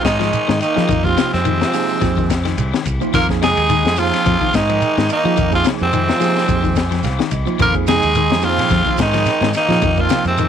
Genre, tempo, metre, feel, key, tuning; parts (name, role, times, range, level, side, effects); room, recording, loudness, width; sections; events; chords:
afrobeat; 107 BPM; 4/4; swing 54% on 16ths; F minor; A4 = 441 Hz
raspy tenor saxophone; melody; 0.0-10.5 s; C4 to Bb4; -18 LUFS; equal
clear trombone section; second line; 0.0-10.5 s; C3 to Bb3; -26 LUFS; right 11 dB
tine electric piano; accompaniment; 0.0-10.3 s; F3 to Ab5; -24 LUFS; right 15 dB; medium stereo tremolo
fingered electric bass; bass; 0.0-10.5 s; C2 to F3; -20 LUFS; equal
crunchy breakbeat drum kit; drums; 0.0-10.5 s; hi-hat, kick drum, ride cymbal, snare drum; -22 LUFS; left 4 dB
clear trumpet; second line; 0.1-10.5 s; Ab3 to F4; -26 LUFS; right 14 dB
shekere; percussion; 0.1-10.5 s; -26 LUFS; right 6 dB
electric guitar at the edge of break-up; arpeggios; 0.2-10.5 s; C3 to F3; -24 LUFS; left 13 dB; analog chorus
congas; percussion; 7.6-10.3 s; -27 LUFS; right 6 dB
small room reverb; 1960s-style stereo with parts hard left and right; -14 LUFS; side -8 dB against mid
0.0-10.5 A section
tine electric piano fill 6.5-7.6
0.0 Fm7